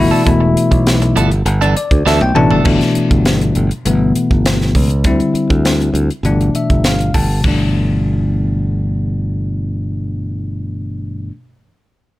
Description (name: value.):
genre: electric jazz fusion.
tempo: 100 BPM.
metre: 4/4.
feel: straight.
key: G major.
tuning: A4 = 440 Hz.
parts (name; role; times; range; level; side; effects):
bell-like tine electric piano; accompaniment; 0.0-11.3 s; B2 to A5; -16 LUFS; left 2 dB; none.
modern bright fingered electric bass; bass; 0.0-11.3 s; E1 to D2; -16 LUFS; equal; none.
clean electric guitar; stabs; 0.1-2.7 s; E3 to A4; -19 LUFS; right 4 dB; wide subtle chorus.
crisp fusion drum kit; drums; 0.3-7.6 s; crash cymbal, hi-hat, kick drum, snare drum, toms; -17 LUFS; right 1 dB; none.
room: light reverb.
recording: none.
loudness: -12 LUFS.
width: side -16 dB against mid.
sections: 0.0-2.7 A section; 2.7-7.4 B section; 7.4-9.8 C section.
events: tine electric piano fill 1.5-2.7, 6.2-7.4; drum fill 2.1-2.7.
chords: 0.0 G69; 5.0 D9sus4; 6.2 G69.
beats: | 0.26 0.86 1.46 2.05 | 2.65 3.25 3.85 4.45 | 5.05 5.65 6.25 6.84 | 7.44 8.04 8.64 9.24.